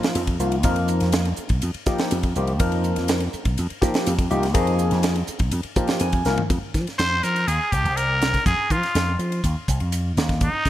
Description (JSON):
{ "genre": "electric jazz fusion", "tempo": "123 BPM", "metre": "4/4", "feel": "straight", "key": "F minor", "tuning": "A4 = 441 Hz", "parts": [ { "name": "barky tine electric piano", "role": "accompaniment", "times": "0.0-6.5 s", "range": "F3 to Ab5", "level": "-25 LUFS", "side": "left 1 dB", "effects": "phaser" }, { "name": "crisp fusion drum kit", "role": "drums", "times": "0.0-10.7 s", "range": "hi-hat, kick drum, ride cymbal, snare drum, toms", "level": "-25 LUFS", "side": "equal", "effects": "gated reverb" }, { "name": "slap bass with an envelope filter", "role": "bass", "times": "0.2-10.7 s", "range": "C2 to F3", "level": "-23 LUFS", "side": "equal", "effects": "none" }, { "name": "trumpet with straight mute", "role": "melody", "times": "7.0-10.7 s", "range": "Eb4 to C5", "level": "-22 LUFS", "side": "equal", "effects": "none" } ], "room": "light reverb, small room ambience", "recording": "bright 1980s-style digital production", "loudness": "-19 LUFS", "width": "side -13 dB against mid", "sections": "0.0-6.5 A section; 6.5-10.7 B section", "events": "tine electric piano fill 5.8-6.5; drum fill 6.3", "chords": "0.0 Fm11; 6.5 F5; 10.2 Eb5" }